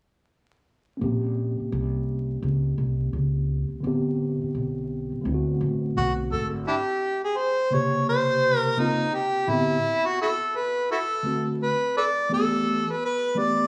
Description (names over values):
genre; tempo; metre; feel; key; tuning
hip hop; 85 BPM; 4/4; swing 61% on 16ths; unclear; A4 = 439 Hz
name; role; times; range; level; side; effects
mellow tine electric piano; accompaniment; 1.0-13.7 s; A2 to G4; -30 LUFS; equal; none
upright bass; bass; 1.0-6.7 s; Ab1 to D2; -29 LUFS; equal; none
warm harmonica; melody; 6.0-13.7 s; D4 to D5; -26 LUFS; equal; none
room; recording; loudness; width
moderate plate reverb, RT60 2.6 s; worn, warbling old tape, cassette tape, vinyl crackle, warbly pitch drift; -25 LUFS; mono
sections
1.0-6.7 A section; 6.7-13.7 B section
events
none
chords
1.0 Bbm69; 3.8 Am11; 5.3 D7; 6.7 Bbm69; 9.5 Am11; 10.9 D7; 12.3 G69